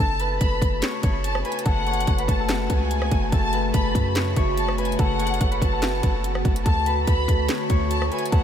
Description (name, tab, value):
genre	hip hop, trap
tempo	144 BPM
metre	4/4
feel	half-time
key	F# minor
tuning	A4 = 440 Hz
part	concert harp	melody	0.0-8.4 s	F#4 to C#6	-28 LUFS	left 2 dB	low-pass filter, analog delay
part	warm studio violin section	second line	0.0-8.4 s	F#5 to B5	-28 LUFS	left 1 dB	analog delay
part	warbly tape-like pad	sustained chords	0.3-8.4 s	C#3 to F#4	-29 LUFS	equal	chorus, built-in reverb
part	warm 808-style bass	bass	0.0-8.4 s	F#1 to F#2	-26 LUFS	equal	none
part	trap drum kit	drums	0.2-8.4 s	handclaps, hi-hat, kick drum, rim click, snare drum	-24 LUFS	equal	none
room	moderate huge ambient reverb, RT60 7.6 s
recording	dreamy mix soaked in reverb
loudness	-20 LUFS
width	side -9 dB against mid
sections	0.0-8.4 A section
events	none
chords	0.0 F#m; 6.7 D